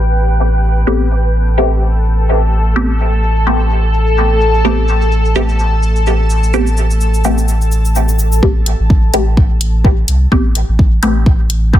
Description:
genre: dub techno.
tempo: 127 BPM.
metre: 4/4.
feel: swing 56% on 16ths.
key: A minor.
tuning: A4 = 440 Hz.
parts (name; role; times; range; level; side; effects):
granular cloud pad; sustained chords; 0.0-8.4 s; A4 to A5; -19 LUFS; left 1 dB; built-in reverb, sidechain pumping.
filtered dub chord stab; stabs; 0.0-11.8 s; A3 to G4; -17 LUFS; left 1 dB; phaser, sidechain pumping, dub echo.
warm sub bass; bass; 0.0-11.8 s; A1 to C2; -13 LUFS; equal; sidechain pumping.
electronic shaker and hi-hat; drums; 0.2-11.6 s; none; -23 LUFS; left 1 dB; low-pass filter on perc, small room reverb, low-pass filter on hats.
electronic kick drum; drums; 8.4-11.8 s; none; -11 LUFS; equal; small room reverb.
room: little or no reverb.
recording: dense, heavily limited modern master, low-pass filter.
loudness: -10 LUFS.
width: side -12 dB against mid.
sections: 0.0-8.4 A section; 8.4-11.8 B section.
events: filter sweep on synth stab 0.0-8.4; filter sweep 0.0-8.4.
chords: 0.0 Am9.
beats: 0.40 | 0.87 1.34 1.81 2.29 | 2.76 3.23 3.70 4.18 | 4.65 5.12 5.59 6.07 | 6.54 7.01 7.48 7.96 | 8.43 8.90 9.37 9.85 | 10.32 10.79 11.26 11.73.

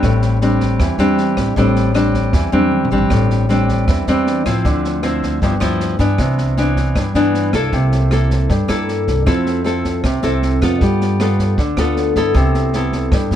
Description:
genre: bossa nova.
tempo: 156 BPM.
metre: 4/4.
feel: straight.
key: A minor.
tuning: A4 = 442 Hz.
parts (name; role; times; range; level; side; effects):
nylon-string guitar; accompaniment; 0.0-13.4 s; G2 to A4; -16 LUFS; left 1 dB; none.
upright bass; bass; 0.0-13.4 s; G1 to G2; -19 LUFS; equal; none.
open jazz drum kit; drums; 0.0-13.4 s; kick drum, rim click, snare drum, toms; -22 LUFS; equal; none.
room: little or no reverb.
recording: close, detailed microphones.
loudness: -14 LUFS.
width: side -10 dB against mid.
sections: 0.0-3.1 A section; 3.1-13.4 B section.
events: drum fill 2.3-3.1.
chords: 0.0 Am7; 4.6 Dm9; 5.4 G6; 6.2 Cmaj9; 7.7 C6; 9.3 Fmaj7; 10.8 G9; 12.3 C6.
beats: | 0.02 0.41 0.79 1.18 | 1.56 1.95 2.34 2.72 | 3.11 3.49 3.88 4.26 | 4.65 5.03 5.42 5.80 | 6.19 6.58 6.96 7.35 | 7.73 8.12 8.50 8.89 | 9.27 9.66 10.04 10.43 | 10.81 11.20 11.58 11.96 | 12.35 12.73 13.12.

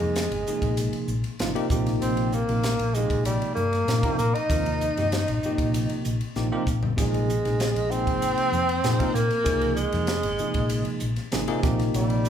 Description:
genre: electric jazz fusion.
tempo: 97 BPM.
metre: 4/4.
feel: straight.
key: unclear.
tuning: A4 = 436 Hz.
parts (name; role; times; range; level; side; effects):
breathy tenor saxophone; melody; 0.0-12.3 s; G3 to Eb4; -26 LUFS; right 1 dB; none.
bell-like tine electric piano; accompaniment; 0.0-12.3 s; C3 to Bb4; -29 LUFS; right 1 dB; medium stereo tremolo.
hollow-body short-scale fingered electric bass; bass; 0.0-12.3 s; Ab1 to Bb2; -27 LUFS; left 1 dB; none.
crisp fusion drum kit; drums; 0.0-12.3 s; hi-hat, kick drum, ride cymbal, snare drum, splash cymbal, toms; -30 LUFS; equal; none.
room: wet large studio reverb, RT60 1.2 s.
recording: band playing live in one room.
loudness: -22 LUFS.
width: side -9 dB against mid.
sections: 0.0-12.3 A section.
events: drum fill 6.4-7.0.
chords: 0.0 Bb7sus2; 1.7 Cm7/Bb; 7.0 Bb7sus2; 11.6 Cm7/Bb.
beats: 0.15 0.77 1.39 | 2.01 2.63 3.26 3.88 | 4.50 5.12 5.74 6.37 | 6.99 7.61 8.23 8.85 | 9.47 10.09 10.71 11.34 | 11.96.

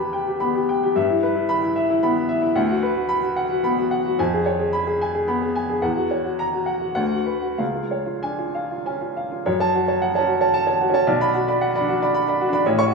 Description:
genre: classical, romantic character piece for solo piano.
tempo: 93-118 BPM.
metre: 3/4.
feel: rubato.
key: F# minor.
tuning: A4 = 440 Hz.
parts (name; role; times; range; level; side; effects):
clear upright piano; solo; 0.0-12.9 s; A1 to C#6; -19 LUFS; equal; none.
room: moderate scoring stage reverb, RT60 1.6 s.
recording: studio ambience.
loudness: -19 LUFS.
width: side -4 dB against mid.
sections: 0.0-9.5 A section; 9.5-12.9 B section.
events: none.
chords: 0.0 Em; 1.0 Em/G; 2.6 Bm/D; 4.2 C#7/E#; 5.8 F#7/E; 7.0 Bm/D; 7.6 C#; 9.5 F#m; 11.1 Bm.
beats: 0.41 | 0.95 1.48 2.02 | 2.56 3.09 3.63 | 4.19 4.73 5.27 | 5.82 6.39 6.97 | 7.59 8.23 8.86 | 9.47 10.02 10.54 | 11.07 11.61 12.13 | 12.64.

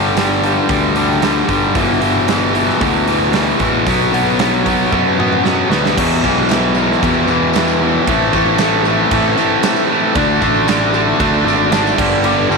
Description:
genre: classic rock.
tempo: 114 BPM.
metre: 4/4.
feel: straight.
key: E minor.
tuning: A4 = 440 Hz.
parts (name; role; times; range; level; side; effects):
overdriven electric guitar; riff; 0.0-12.6 s; E2 to D4; -16 LUFS; left 12 dB; none.
sludgy distorted guitar; riff; 0.0-12.6 s; E2 to D4; -17 LUFS; right 12 dB; overdrive.
fuzz picked electric bass; bass; 0.0-12.6 s; G1 to F#2; -20 LUFS; equal; overdrive.
huge arena drum kit; drums; 0.2-12.4 s; crash cymbal, hi-hat, kick drum, snare drum, toms; -20 LUFS; right 5 dB; none.
mellow tonewheel organ; sustained chords; 5.7-12.6 s; A3 to E5; -24 LUFS; equal; none.
tambourine; percussion; 6.0-12.6 s; none; -34 LUFS; left 14 dB; none.
room: moderate echo chamber reverb, RT60 1.9 s.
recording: 1960s-style stereo with parts hard left and right.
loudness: -12 LUFS.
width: side -3 dB against mid.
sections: 0.0-6.0 A section; 6.0-12.6 B section.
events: drum fill 4.9-6.0.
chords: 0.0 G5; 1.8 Em/G; 3.9 Bm; 6.0 Em; 8.1 Am; 10.2 D; 12.0 G.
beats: 0.19 0.71 1.24 | 1.76 2.29 2.82 3.34 | 3.87 4.39 4.92 5.44 | 5.96 6.49 7.01 7.54 | 8.06 8.58 9.11 9.63 | 10.15 10.67 11.20 11.72 | 12.24.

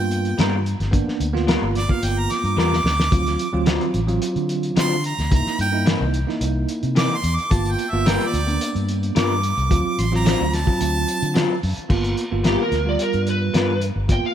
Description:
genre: straight-eighth soul blues.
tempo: 109 BPM.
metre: 4/4.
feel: straight.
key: unclear.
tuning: A4 = 440 Hz.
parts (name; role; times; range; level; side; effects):
bright harmonica; second line; 0.0-11.6 s; D5 to D6; -25 LUFS; right 2 dB; analog delay.
bell-like tine electric piano; accompaniment; 0.0-14.3 s; F#3 to F4; -25 LUFS; right 4 dB; fast stereo tremolo.
fingered electric bass; bass; 0.0-14.3 s; G1 to D3; -22 LUFS; left 1 dB; none.
cloth-damped thuddy drum kit; drums; 0.1-14.2 s; crash cymbal, hi-hat, kick drum, snare drum; -23 LUFS; equal; none.
electric guitar through a small old amp; stabs; 0.4-13.7 s; C3 to A#4; -27 LUFS; left 4 dB; analog chorus.
lead guitar through a small cranked amp; melody; 12.5-14.3 s; G4 to G5; -24 LUFS; right 1 dB; overdrive.
room: light reverb.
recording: none.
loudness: -18 LUFS.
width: side -10 dB against mid.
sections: 0.0-11.9 A section; 11.9-14.3 A section.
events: harmonica solo 0.0-11.9; drum fill 2.6-3.1; lead electric guitar solo 11.9-14.3.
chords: 0.0 G7#9; 3.1 D7#9; 5.3 C7#9; 7.5 G7#9; 9.7 D7#9; 11.9 G7#9.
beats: 0.38 | 0.93 1.48 2.03 2.58 | 3.12 3.67 4.22 4.77 | 5.32 5.87 6.42 6.96 | 7.51 8.06 8.61 9.16 | 9.71 10.26 10.80 11.35 | 11.90 12.45 13.00 13.54 | 14.09.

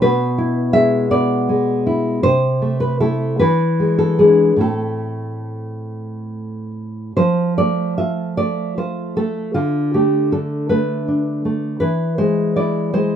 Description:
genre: romantic piece for solo classical guitar.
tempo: 46-56 BPM (dotted quarters).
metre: 6/8.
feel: rubato.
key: A minor.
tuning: A4 = 440 Hz.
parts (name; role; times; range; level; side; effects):
nylon-string guitar; solo; 0.0-13.2 s; A2 to E5; -16 LUFS; equal; none.
room: light reverb.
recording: rough home demo mix.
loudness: -15 LUFS.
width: side -9 dB against mid.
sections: 0.0-7.2 A section; 7.2-13.2 B section.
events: none.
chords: 0.0 E7/B; 2.2 Am/C; 3.4 E7; 4.6 Am; 7.2 F; 9.6 Dm6; 11.8 E.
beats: | 0.03 1.11 | 2.24 3.41 | 4.64 5.91 | 7.18 8.39 | 9.55 10.70 | 11.80 12.93.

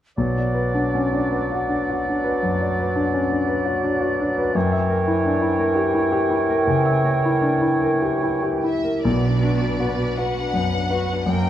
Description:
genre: classical, romantic movement for piano and orchestra.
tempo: 46-58 BPM (dotted quarters).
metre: 12/8.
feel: rubato.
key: B minor.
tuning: A4 = 435 Hz.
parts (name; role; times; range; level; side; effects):
clear grand piano; melody; 0.2-11.5 s; B1 to E5; -21 LUFS; left 1 dB; none.
mellow clarinet; second line; 0.2-8.7 s; A#4 to B4; -29 LUFS; left 1 dB; none.
small flute group; second line; 0.2-8.7 s; F#5 to G5; -28 LUFS; right 3 dB; none.
warm oboe; second line; 0.2-8.7 s; C#5 to D5; -28 LUFS; right 2 dB; none.
clear bassoon; accompaniment; 0.2-8.7 s; E3 to F#3; -28 LUFS; right 2 dB; none.
warm symphonic violin section; melody; 8.7-11.5 s; D5 to G5; -28 LUFS; left 2 dB; none.
dark symphonic violin section; second line; 9.1-11.5 s; A#3 to B4; -29 LUFS; left 3 dB; none.
dark symphonic cello section; bass; 9.1-11.5 s; F#2 to B2; -25 LUFS; right 4 dB; none.
room: moderate scoring stage reverb, RT60 1.6 s.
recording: dark, warm production.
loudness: -18 LUFS.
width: side -11 dB against mid.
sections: 0.2-9.1 A section; 9.1-11.5 B section.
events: none.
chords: 0.2 Bm; 4.5 F#7b9; 9.1 Bm.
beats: | 0.18 1.32 2.43 3.50 | 4.55 5.59 6.67 7.82 | 9.06 10.18 11.28.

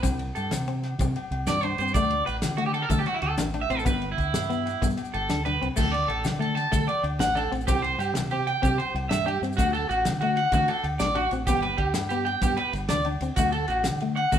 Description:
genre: highlife guitar band.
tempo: 126 BPM (dotted quarters).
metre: 12/8.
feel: straight.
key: D mixolydian.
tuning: A4 = 439 Hz.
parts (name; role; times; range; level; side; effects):
semi-hollow electric guitar; accompaniment; 0.0-14.4 s; A3 to D4; -32 LUFS; left 7 dB; none.
electric guitar at the edge of break-up; arpeggios; 0.0-14.4 s; E4 to A5; -26 LUFS; right 2 dB; none.
fingered electric bass; bass; 0.0-14.4 s; G1 to D3; -31 LUFS; equal; none.
warm soul drum kit; drums; 0.0-14.4 s; crash cymbal, kick drum, ride cymbal, snare drum; -31 LUFS; equal; none.
agogo bells; percussion; 0.0-14.3 s; none; -38 LUFS; left 4 dB; none.
congas; percussion; 0.0-14.4 s; none; -34 LUFS; left 3 dB; none.
maracas; percussion; 0.0-14.4 s; none; -41 LUFS; left 6 dB; none.
room: moderate stone room reverb, RT60 1.2 s.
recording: band playing live in one room.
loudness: -23 LUFS.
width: side -9 dB against mid.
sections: 0.0-5.8 A section; 5.8-14.4 B section.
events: clean electric guitar solo 0.0-5.8; drum fill 5.3-5.8.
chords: 0.1 C5; 2.0 D5; 3.9 G; 5.8 D5; 7.7 C5; 9.6 D; 11.5 G; 13.4 D.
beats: | 0.05 0.53 1.00 1.48 | 1.96 2.44 2.91 3.39 | 3.87 4.34 4.82 5.29 | 5.77 6.25 6.72 7.20 | 7.67 8.15 8.63 9.10 | 9.58 10.05 10.53 11.01 | 11.48 11.96 12.43 12.91 | 13.38 13.86 14.33.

